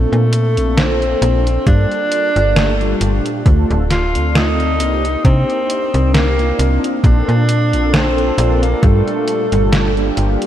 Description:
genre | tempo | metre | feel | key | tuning
vaporwave | 67 BPM | 4/4 | swing 55% on 16ths | C dorian | A4 = 443 Hz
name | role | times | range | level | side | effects
breathy tenor saxophone | melody | 0.0-10.2 s | A3 to F4 | -19 LUFS | equal | vintage 12-bit sampler grit, tape echo
mellow synth brass | accompaniment | 0.0-10.5 s | Bb2 to D5 | -20 LUFS | equal | analog chorus, tape echo
slap-like FM bass | bass | 0.0-10.4 s | D1 to C3 | -15 LUFS | equal | none
detuned 8-bit digital drum machine | drums | 0.1-10.5 s | hi-hat, snare drum | -20 LUFS | equal | none
electronic kick drum | drums | 1.7-9.0 s | none | -12 LUFS | equal | none
room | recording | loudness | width
wet lush hall reverb, RT60 2.6 s | dreamy mix soaked in reverb | -12 LUFS | side -11 dB against mid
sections
0.0-10.5 A section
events
none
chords
0.0 Bbmaj7; 1.7 Gm9; 3.5 Dm7; 4.8 Cm7; 7.0 Bbmaj7; 8.8 Gm9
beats
0.77 1.67 2.56 | 3.46 4.35 5.25 6.14 | 7.04 7.94 8.83 9.73

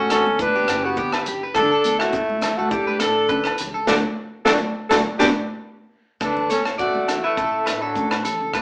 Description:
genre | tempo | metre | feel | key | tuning
highlife guitar band | 103 BPM | 4/4 | swing 53% on 16ths | D major | A4 = 440 Hz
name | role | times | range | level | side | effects
breathy alto saxophone | melody | 0.0-8.6 s | D4 to B4 | -24 LUFS | equal | none
warm trumpet | second line | 0.0-8.6 s | F#3 to D4 | -29 LUFS | equal | none
picked steel-string acoustic guitar | accompaniment | 0.0-8.6 s | F#3 to E4 | -30 LUFS | equal | none
electric guitar at the edge of break-up | arpeggios | 0.0-8.6 s | D4 to D5 | -28 LUFS | equal | none
upright bass | bass | 0.0-8.6 s | F#1 to A2 | -37 LUFS | equal | none
crunchy breakbeat drum kit | drums | 0.1-8.6 s | hi-hat, kick drum, rim click, snare drum | -29 LUFS | equal | none
agogo bells | percussion | 0.1-8.6 s | none | -32 LUFS | equal | none
congas | percussion | 0.1-8.4 s | none | -34 LUFS | equal | none
shekere | percussion | 0.1-8.6 s | none | -44 LUFS | equal | none
room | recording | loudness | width
wet stone room reverb, RT60 0.9 s | band playing live in one room, small speaker sound | -21 LUFS | mono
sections
0.0-6.2 A section; 6.2-8.6 B section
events
band accent 3.9-6.2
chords
0.4 Gmaj7; 1.6 D5; 2.7 Asus4; 3.9 D; 5.0 Gmaj7; 6.2 D5; 7.4 Asus4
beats
0.39 0.97 | 1.55 2.14 2.72 3.30 | 3.88 4.46 5.04 5.62 | 6.21 6.79 7.37 7.96 | 8.54

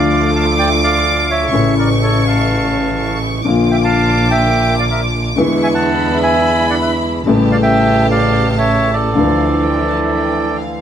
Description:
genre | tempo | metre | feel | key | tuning
tango | 126 BPM | 4/4 | rubato | D harmonic minor | A4 = 441 Hz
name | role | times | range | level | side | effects
bandoneon | melody | 0.0-10.6 s | A4 to A5 | -17 LUFS | right 1 dB | none
warm studio violin section | second line | 0.0-10.8 s | F5 to D6 | -21 LUFS | equal | none
warm concert grand piano | accompaniment | 0.0-10.8 s | A1 to F4 | -16 LUFS | left 2 dB | none
clear symphonic string section | stabs | 0.0-10.8 s | C#3 to G4 | -23 LUFS | right 4 dB | none
clear double bass | bass | 0.0-10.1 s | A1 to E2 | -19 LUFS | right 1 dB | none
room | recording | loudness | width
wet studio ambience, RT60 0.5 s | band playing live in one room | -12 LUFS | side -9 dB against mid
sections
0.0-10.8 A section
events
break 10.1-10.8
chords
0.0 Dm; 1.5 A; 3.5 Bb; 5.4 E7; 7.3 A7; 9.2 Dmadd9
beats
0.10 0.57 1.05 | 1.53 2.01 2.49 2.97 | 3.45 3.94 4.42 4.89 | 5.37 5.84 6.32 6.79 | 7.26 7.74 8.21 8.69 | 9.16 9.64 10.12 10.60

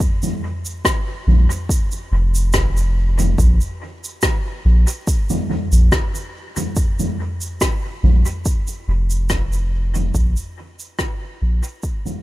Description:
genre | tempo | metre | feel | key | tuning
ambient dub | 71 BPM | 4/4 | swing 53% on 16ths | unclear | A4 = 440 Hz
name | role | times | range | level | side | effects
electronic kick drum | drums | 0.0-12.0 s | none | -20 LUFS | equal | none
soft-mallet drum kit | drums | 0.0-12.2 s | rim click, shaker, toms | -23 LUFS | equal | dub echo
soft dub sub bass | bass | 1.3-11.6 s | F1 to Bb1 | -15 LUFS | equal | none
room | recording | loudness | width
little or no reverb | none | -16 LUFS | side -16 dB against mid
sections
0.0-12.2 A section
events
fade-out 7.9-12.2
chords
none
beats
| 0.01 0.85 1.70 2.54 | 3.38 4.23 5.08 5.92 | 6.77 7.61 8.46 9.30 | 10.15 10.99 11.84

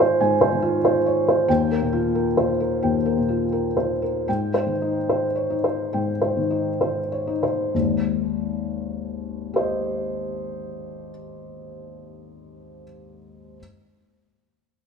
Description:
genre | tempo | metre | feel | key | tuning
neoclassical minimalist piano | 64-95 BPM | 4/4 | rubato | Ab major | A4 = 440 Hz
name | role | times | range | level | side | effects
felt-muted upright piano | solo | 0.0-13.6 s | Ab1 to Ab5 | -21 LUFS | left 1 dB | none
room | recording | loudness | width
moderate scoring stage reverb, RT60 2.0 s | minimal, uncompressed stereo recording | -20 LUFS | side -5 dB against mid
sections
0.0-7.7 A section; 7.7-11.4 B section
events
slowing down 0.2-7.7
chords
0.0 Ab6; 1.5 Ebadd9; 4.3 Abmaj7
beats
0.21 0.85 | 1.49 2.13 2.81 3.51 | 4.27 5.07 5.92 6.81 | 7.73 8.62 9.53 10.44

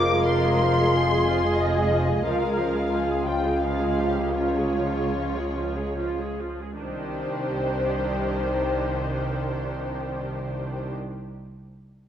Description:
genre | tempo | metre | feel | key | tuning
cinematic | 70-92 BPM | 3/4 | rubato | C minor | A4 = 440 Hz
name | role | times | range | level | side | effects
muted symphonic violin section | melody | 0.0-10.9 s | C5 to D6 | -30 LUFS | left 3 dB | none
muted symphonic violin section | second line | 0.0-10.9 s | F4 to C5 | -32 LUFS | left 1 dB | none
muted symphonic viola section | accompaniment | 0.0-10.9 s | Eb3 to Ab4 | -30 LUFS | right 2 dB | none
warm French horn section | sustained chords | 0.0-11.0 s | Eb3 to F4 | -28 LUFS | left 2 dB | none
muted symphonic cello section | bass | 0.0-10.9 s | C2 to F2 | -31 LUFS | right 2 dB | none
muted symphonic double bass section | bass | 0.0-10.9 s | F1 to Db2 | -31 LUFS | right 2 dB | none
room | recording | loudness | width
wet scoring stage reverb, RT60 1.6 s | none | -22 LUFS | side -10 dB against mid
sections
0.0-6.8 A section; 6.8-11.9 B section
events
slowing down 1.3-6.8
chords
0.0 Fm; 2.2 Db; 6.8 Cmadd9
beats
| 0.27 0.93 1.58 | 2.24 2.92 3.62 | 4.37 5.16 5.97 | 6.82 7.66 8.50 | 9.35 10.20

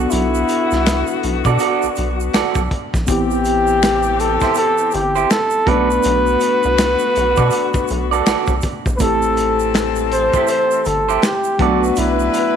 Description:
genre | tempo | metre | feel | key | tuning
R&B, neo-soul | 81 BPM | 4/4 | swing 61% on 16ths | A dorian | A4 = 440 Hz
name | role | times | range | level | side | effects
breathy flugelhorn | melody | 0.0-12.6 s | E4 to C5 | -17 LUFS | equal | slapback echo
tine electric piano | accompaniment | 0.0-12.6 s | G3 to A4 | -24 LUFS | equal | fast stereo tremolo
warm saxophone section | stabs | 0.0-12.6 s | D3 to B4 | -23 LUFS | left 12 dB | none
rubbery square bass | bass | 0.0-12.3 s | G1 to B2 | -22 LUFS | equal | none
crunchy breakbeat drum kit | drums | 0.1-12.5 s | hi-hat, kick drum, snare drum | -21 LUFS | equal | none
egg shaker and finger snaps | percussion | 0.1-12.5 s | none | -29 LUFS | equal | none
electric guitar through a small old amp | second line | 1.5-11.8 s | E4 to D5 | -22 LUFS | right 12 dB | spring reverb, slapback echo
room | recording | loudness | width
light reverb, small room ambience | 1960s-style stereo with parts hard left and right | -14 LUFS | side -8 dB against mid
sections
0.0-12.6 A section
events
none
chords
0.0 E9sus4/B; 3.1 Am7; 5.7 Bm7; 9.0 Am7; 11.6 E9sus4/B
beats
| 0.11 0.85 1.59 2.33 | 3.08 3.82 4.56 5.30 | 6.04 6.78 7.52 8.26 | 9.00 9.74 10.48 11.22 | 11.96

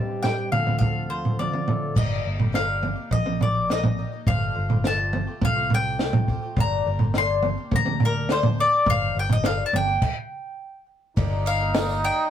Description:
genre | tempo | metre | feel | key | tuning
indie folk with a building arrangement | 104 BPM | 4/4 | straight | unclear | A4 = 439 Hz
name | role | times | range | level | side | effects
mandolin | melody | 0.0-12.3 s | Bb4 to C6 | -26 LUFS | left 2 dB | none
fingerpicked steel-string acoustic guitar | accompaniment | 0.0-2.0 s | G2 to A4 | -30 LUFS | equal | none
compact cocktail drum kit | drums | 0.2-12.2 s | crash cymbal, kick drum, ride cymbal, snare drum, toms | -24 LUFS | right 1 dB | none
fingered electric bass | bass | 0.5-12.1 s | G1 to D2 | -28 LUFS | equal | none
picked twelve-string acoustic guitar | accompaniment | 1.9-12.3 s | G2 to G4 | -32 LUFS | left 8 dB | none
trombone with straight mute | second line | 11.2-12.3 s | Eb4 | -26 LUFS | right 2 dB | none
tambourine | percussion | 11.5-12.3 s | none | -42 LUFS | right 1 dB | none
room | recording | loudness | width
moderate booth ambience, RT60 0.2 s | rough rehearsal-room recording | -20 LUFS | side -10 dB against mid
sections
0.0-2.0 A section; 2.0-11.2 B section; 11.2-12.3 C section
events
stop 10.0-11.2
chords
0.0 Cm/G; 0.5 Dm7; 2.0 Eb/G; 4.3 Fadd9/G; 6.6 Gm; 8.9 Cm/G; 9.7 Gm; 11.2 Eb/G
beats
0.23 0.81 1.39 | 1.96 2.54 3.11 3.69 | 4.26 4.84 5.42 5.99 | 6.57 7.14 7.72 8.29 | 8.87 9.45 10.02 10.60 | 11.17 11.75

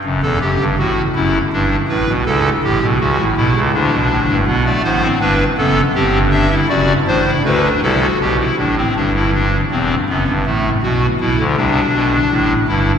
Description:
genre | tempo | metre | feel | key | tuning
classical, baroque-style 3-part fugue for pipe organ | 81 BPM | 3/4 | straight | G major | A4 = 438 Hz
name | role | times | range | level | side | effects
pipe organ, clarinet reed | solo | 0.0-12.9 s | E1 to E5 | -13 LUFS | equal | none
room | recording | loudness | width
wet cathedral reverb, RT60 6.2 s | heard from further back in the room | -13 LUFS | side -8 dB against mid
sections
0.0-9.0 A section; 9.0-13.0 B section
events
none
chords
0.0 Emadd9; 1.5 Gadd9; 2.3 A7; 3.7 D5; 4.5 G; 6.0 Cadd9/G; 6.7 D7/F#; 8.2 G/B; 9.0 C/G; 10.5 F#madd11/A; 11.2 Bm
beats
| 0.04 0.78 1.53 | 2.27 3.00 3.74 | 4.48 5.22 5.96 | 6.71 7.45 8.21 | 8.96 9.72 10.46 | 11.21 11.95 12.69

